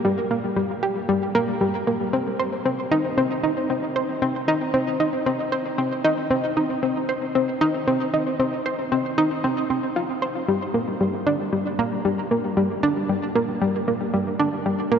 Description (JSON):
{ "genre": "ambient", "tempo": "115 BPM", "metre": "4/4", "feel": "straight", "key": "unclear", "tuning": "A4 = 442 Hz", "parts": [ { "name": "analog pluck", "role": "solo", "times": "0.0-15.0 s", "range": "G3 to C5", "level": "-21 LUFS", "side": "equal", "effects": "chorus, tape echo" } ], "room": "wet huge ambient reverb, RT60 8.2 s", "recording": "dark, warm production, nothing above 7.7 kHz", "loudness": "-21 LUFS", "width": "side -7 dB against mid", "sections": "0.0-15.0 A section", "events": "none", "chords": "none", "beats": "| 0.04 0.57 1.09 1.61 | 2.13 2.65 3.18 3.70 | 4.22 4.74 5.26 5.79 | 6.31 6.83 7.35 7.87 | 8.39 8.91 9.44 9.96 | 10.48 11.00 11.52 12.04 | 12.57 13.09 13.61 14.13 | 14.65" }